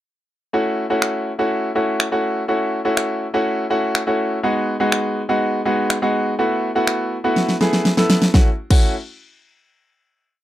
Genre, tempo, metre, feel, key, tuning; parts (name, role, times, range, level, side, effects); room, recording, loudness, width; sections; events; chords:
dance-pop; 123 BPM; 4/4; straight; F# dorian; A4 = 440 Hz
clear concert grand piano; accompaniment; 0.5-8.9 s; G#3 to A4; -18 LUFS; equal; sidechain pumping
pop drum kit; drums; 1.0-8.8 s; crash cymbal, finger snaps, kick drum, snare drum; -16 LUFS; equal
light reverb; dry, close 1970s-style studio recording; -17 LUFS; side -13 dB against mid
0.5-8.3 verse; 8.3-10.3 final chord
drum fill 7.4-8.3
0.5 F#m7; 4.4 G#m7; 6.4 B7sus4; 8.3 F#m7